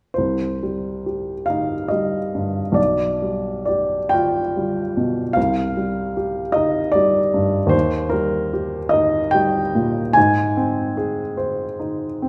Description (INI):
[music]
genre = classical, romantic nocturne for solo piano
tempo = 42-52 BPM (dotted quarters)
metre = 6/8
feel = rubato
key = C minor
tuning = A4 = 440 Hz
[part]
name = clear baby grand piano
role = solo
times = 0.1-12.3 s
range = B1 to Ab5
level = -20 LUFS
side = equal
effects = none
[sound]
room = moderate recital hall reverb, RT60 1.6 s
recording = none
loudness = -20 LUFS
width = mono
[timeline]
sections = 0.2-12.3 A section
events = none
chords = 0.2 Cm; 2.8 G7/B; 5.4 Cm; 7.7 Eb; 10.2 Ab